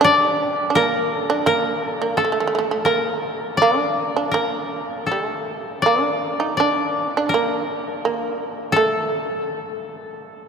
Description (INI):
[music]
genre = japanese traditional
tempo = 83 BPM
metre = 4/4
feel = uneven beats, rubato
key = unclear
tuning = A4 = 439 Hz
[part]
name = koto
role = melody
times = 0.0-10.5 s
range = G4 to D5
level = -22 LUFS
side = left 3 dB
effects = none
[part]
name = shamisen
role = second line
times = 0.0-10.5 s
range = A3 to Eb4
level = -21 LUFS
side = right 3 dB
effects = none
[sound]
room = wet cathedral reverb, RT60 5.7 s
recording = in a vast, echoing space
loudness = -18 LUFS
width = side -6 dB against mid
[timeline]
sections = 0.0-10.5 A section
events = none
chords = none